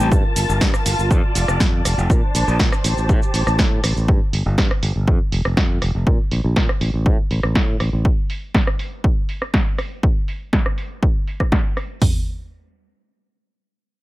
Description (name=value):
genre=filtered disco house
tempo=121 BPM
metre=4/4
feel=straight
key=unclear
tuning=A4 = 440 Hz
part: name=muted studio string section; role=sustained chords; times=0.0-4.1 s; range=D4 to A5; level=-24 LUFS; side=left 1 dB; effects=sidechain pumping, low-pass filter
part: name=modern bright fingered electric bass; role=bass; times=0.0-8.0 s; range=F1 to Bb2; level=-20 LUFS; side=equal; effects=sidechain pumping, low-pass filter
part: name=punchy analog drum machine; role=drums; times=0.0-11.9 s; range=hi-hat, rim click, shaker, snare drum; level=-23 LUFS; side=right 1 dB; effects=sidechain pumping on perc, low-pass filter on perc, sidechain pumping on hats, low-pass filter on hats, low-pass filter on snare
part: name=punchy analog drum machine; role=drums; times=0.1-12.1 s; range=hi-hat, kick drum, toms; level=-18 LUFS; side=equal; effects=none
room=little or no reverb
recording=none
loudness=-16 LUFS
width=side -18 dB against mid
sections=0.0-12.0 A section; 12.0-14.0 B section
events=filter sweep on drum 0.0-12.0; filter sweep on fingered electric bass 0.0-8.0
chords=0.1 Gm9; 1.1 F6; 2.1 Bbmaj9; 2.8 Am7; 4.1 N.C.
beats=| 0.12 0.61 1.11 1.60 | 2.10 2.59 3.09 3.59 | 4.08 4.58 5.07 5.57 | 6.07 6.56 7.06 7.55 | 8.05 8.54 9.04 9.54 | 10.03 10.53 11.02 11.52 | 12.02